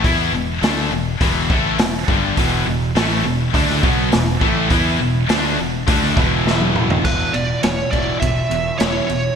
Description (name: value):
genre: hard rock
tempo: 103 BPM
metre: 4/4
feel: straight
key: unclear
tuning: A4 = 439 Hz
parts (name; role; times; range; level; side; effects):
- cranked stack guitar; riff; 0.0-9.4 s; E2 to E4; -22 LUFS; left 9 dB; overdrive
- heavy high-gain guitar; riff; 0.0-7.0 s; E2 to E4; -22 LUFS; equal; distortion
- fingered electric bass; bass; 0.0-9.3 s; E1 to E2; -24 LUFS; equal; none
- raw garage drum kit; drums; 0.0-9.2 s; crash cymbal, hi-hat, kick drum, ride cymbal, snare drum, toms; -20 LUFS; equal; gated reverb
- sludgy distorted guitar; riff; 2.4-9.4 s; E2 to E4; -24 LUFS; right 10 dB; overdrive
- nasal lead guitar with a parked wah; melody; 7.0-9.4 s; B4 to E5; -21 LUFS; right 3 dB; overdrive, ping-pong delay
room: light reverb, studio reverb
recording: bright 1980s-style digital production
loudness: -15 LUFS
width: side -7 dB against mid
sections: 0.0-7.0 A section; 7.0-9.4 B section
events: drum fill 6.5-7.0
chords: 0.0 E5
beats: | 0.04 0.62 1.20 1.78 | 2.37 2.95 3.53 4.12 | 4.70 5.29 5.87 6.46 | 7.04 7.63 8.22 8.80